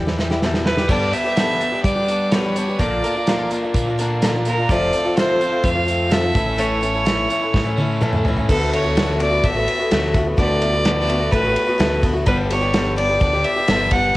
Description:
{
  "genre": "folk rock and heartland rock",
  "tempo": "127 BPM",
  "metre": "4/4",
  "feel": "straight",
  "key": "unclear",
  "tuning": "A4 = 441 Hz",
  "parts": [
    { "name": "picked swing-style acoustic guitar", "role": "accompaniment", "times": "0.0-14.2 s", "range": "E2 to G4", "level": "-22 LUFS", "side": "left 1 dB", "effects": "cassette tape" },
    { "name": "fingered electric bass", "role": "bass", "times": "0.0-14.1 s", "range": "F1 to G3", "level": "-24 LUFS", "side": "equal", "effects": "none" },
    { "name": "loose indie drum kit", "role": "drums", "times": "0.1-14.2 s", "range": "crash cymbal, hi-hat, kick drum, ride cymbal, snare drum, toms", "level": "-21 LUFS", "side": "equal", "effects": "cassette tape" },
    { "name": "bright fiddle", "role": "melody", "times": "0.6-14.2 s", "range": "A4 to F#5", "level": "-21 LUFS", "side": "equal", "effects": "cassette tape" },
    { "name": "overdriven electric guitar", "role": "riff", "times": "0.9-8.5 s", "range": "A2 to B4", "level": "-28 LUFS", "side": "right 1 dB", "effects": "cassette tape" }
  ],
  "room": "light reverb",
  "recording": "home recording on cassette",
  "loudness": "-16 LUFS",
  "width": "side -18 dB against mid",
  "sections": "0.9-8.5 A section; 8.5-14.2 B section",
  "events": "drum fill 0.0-0.9, 7.5-8.5",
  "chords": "0.0 Em; 0.9 G; 2.8 Bb; 4.7 F; 6.4 A; 8.5 D6; 12.3 G"
}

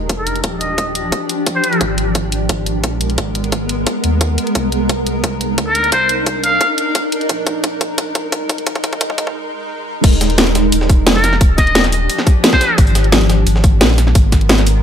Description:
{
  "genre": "liquid drum and bass",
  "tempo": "175 BPM",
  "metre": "4/4",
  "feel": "straight",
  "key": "Eb major",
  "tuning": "A4 = 438 Hz",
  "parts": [
    { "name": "shimmering ambient pad", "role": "sustained chords", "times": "0.0-14.8 s", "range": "F3 to Bb4", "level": "-20 LUFS", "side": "equal", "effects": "chorus, built-in reverb, sidechain pumping" },
    { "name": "warm sub bass", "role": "bass", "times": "0.0-14.8 s", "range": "Eb1 to Eb2", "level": "-18 LUFS", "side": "equal", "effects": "none" },
    { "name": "drum and bass drum kit", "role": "drums", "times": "0.1-14.7 s", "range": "crash cymbal, hi-hat, shaker, snare drum", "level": "-17 LUFS", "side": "equal", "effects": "studio reverb" },
    { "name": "electronic kick drum", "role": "drums", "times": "0.1-14.4 s", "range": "none", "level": "-14 LUFS", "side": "equal", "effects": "overdrive, high-pass filter on kick, studio reverb" },
    { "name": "trumpet with metal mute", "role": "melody", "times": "0.2-1.8, 5.7-6.7, 11.2-12.8 s", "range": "Bb4 to F5", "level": "-17 LUFS", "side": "equal", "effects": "low-pass filter, digital delay" },
    { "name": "breakbeat sampler-style drum kit", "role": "drums", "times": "10.0-14.8 s", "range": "hi-hat, snare drum", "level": "-22 LUFS", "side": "equal", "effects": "high-pass filter on snare, studio reverb, high-pass filter on hats" }
  ],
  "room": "light reverb, digital ambience",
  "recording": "high-pass filter",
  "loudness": "-12 LUFS",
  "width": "side -8 dB against mid",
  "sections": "0.0-10.0 A section; 10.0-14.8 B section",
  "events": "build-up 0.0-10.0; filter sweep on muted trumpet 0.0-10.0; filter sweep 0.0-10.0; drum fill 4.6-9.4; break 9.4-10.0; drop 10.0-14.8",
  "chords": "0.0 Ebmaj9; 1.8 Abmadd9; 4.6 Cm9; 7.3 Bb7sus4; 10.0 Ebmaj9; 12.8 Abmadd9"
}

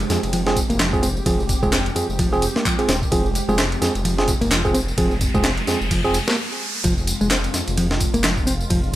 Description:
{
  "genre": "breakbeat, breaks",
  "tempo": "129 BPM",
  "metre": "4/4",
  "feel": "swing 58% on 16ths",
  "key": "F minor",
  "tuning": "A4 = 440 Hz",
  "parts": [
    { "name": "phased analog pad", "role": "sustained chords", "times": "0.0-9.0 s", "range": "Ab3 to G4", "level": "-30 LUFS", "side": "right 1 dB", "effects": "phaser, chorus, sidechain pumping" },
    { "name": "detuned saw bass", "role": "bass", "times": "0.0-9.0 s", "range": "Eb1 to F2", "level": "-24 LUFS", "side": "equal", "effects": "none" },
    { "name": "breakbeat sampler-style drum kit", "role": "drums", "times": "0.0-8.8 s", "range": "kick drum, ride cymbal, snare drum", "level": "-22 LUFS", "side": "equal", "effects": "none" },
    { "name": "electronic tambourine and handclaps", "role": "drums", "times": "0.0-9.0 s", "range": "none", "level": "-27 LUFS", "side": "left 1 dB", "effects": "none" },
    { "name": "tine electric piano", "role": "stabs", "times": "0.1-6.2 s", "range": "C4 to Ab4", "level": "-24 LUFS", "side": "right 2 dB", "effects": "dub echo" },
    { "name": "picked electric bass", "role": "riff", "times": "0.3-8.8 s", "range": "F3 to C4", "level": "-24 LUFS", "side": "equal", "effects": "tube saturation" },
    { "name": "riser", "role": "sound effects", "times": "4.7-6.8 s", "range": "none", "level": "-29 LUFS", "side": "equal", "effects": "none" }
  ],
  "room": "light reverb",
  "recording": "none",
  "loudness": "-17 LUFS",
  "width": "side -14 dB against mid",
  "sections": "0.0-6.8 A section; 6.8-9.0 A section",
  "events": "riser 4.7-6.8; stop 6.4-6.8",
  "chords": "0.0 Fm"
}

